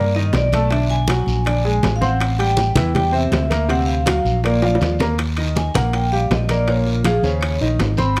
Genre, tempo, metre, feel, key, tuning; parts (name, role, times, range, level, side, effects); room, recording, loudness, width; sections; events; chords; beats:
Afro-Cuban jazz; 161 BPM; 4/4; straight; Eb major from 5.2 s; A4 = 439 Hz
vibraphone with medium hard mallets; melody; 0.0-8.2 s; F4 to C6; -25 LUFS; equal
warm baby grand piano; accompaniment; 0.0-8.2 s; Bb2 to C6; -25 LUFS; equal
mellow fretless electric bass; bass; 0.0-8.2 s; Ab1 to G2; -22 LUFS; equal
congas; percussion; 0.1-8.2 s; -26 LUFS; equal
bongos; percussion; 0.3-8.2 s; -29 LUFS; equal
guiro; percussion; 0.3-8.2 s; -36 LUFS; equal
timbales; percussion; 0.3-8.2 s; -30 LUFS; equal
moderate studio reverb, RT60 0.7 s; -18 LUFS; mono
0.0-5.2 A section; 5.2-8.2 B section
drum fill 4.6-5.2; vibraphone solo 5.2-8.2
0.0 Cm9 (rootless); 0.7 Bm; 1.5 Bb9; 2.2 Am7; 3.7 D7alt; 4.4 Bb; 5.2 Eb; 6.7 Bbm; 7.4 Eb5
0.34 | 0.71 1.08 1.46 1.83 | 2.20 2.58 2.95 3.32 | 3.70 4.07 4.44 4.81 | 5.19 5.56 5.93 6.31 | 6.68 7.05 7.43 7.80 | 8.17